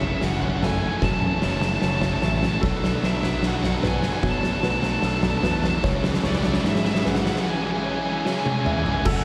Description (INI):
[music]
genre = post-rock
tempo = 75 BPM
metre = 4/4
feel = straight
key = unclear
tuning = A4 = 440 Hz
[part]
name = lead guitar through a small cranked amp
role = melody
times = 0.0-9.2 s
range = D5 to A5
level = -31 LUFS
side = equal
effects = overdrive, diffuse ambient delay
[part]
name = analog string pad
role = sustained chords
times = 0.0-9.2 s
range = C#3 to C#6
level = -38 LUFS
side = equal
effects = none
[part]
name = felt-muted upright piano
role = arpeggios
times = 0.0-9.2 s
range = A4 to C#6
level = -37 LUFS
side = equal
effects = diffuse ambient delay
[part]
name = twelve-string electric guitar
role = arpeggios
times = 0.0-9.2 s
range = F#2 to D4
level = -35 LUFS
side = equal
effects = none
[part]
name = fuzz guitar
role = riff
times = 0.0-9.2 s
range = F#3 to F#4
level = -34 LUFS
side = equal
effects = none
[part]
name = overdriven electric guitar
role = riff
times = 0.0-9.1 s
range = F#2 to F#3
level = -35 LUFS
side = equal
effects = none
[part]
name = overdriven fingered electric bass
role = bass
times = 0.0-9.2 s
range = F#1 to B2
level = -30 LUFS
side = equal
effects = none
[part]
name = oversized low-tuned drum kit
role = drums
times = 0.0-9.2 s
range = crash cymbal, kick drum, snare drum, toms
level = -27 LUFS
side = equal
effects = none
[sound]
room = moderate plate reverb, RT60 3.4 s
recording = dreamy mix soaked in reverb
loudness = -23 LUFS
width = mono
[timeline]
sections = 0.0-9.1 A section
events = build-up 0.0-9.1; drum fill 0.0-7.5, 8.3-9.1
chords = 0.0 F#m7; 2.6 Bm7; 5.9 C#m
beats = 0.23 1.03 1.84 | 2.64 3.44 4.25 5.05 | 5.86 6.66 7.46 8.26 | 9.06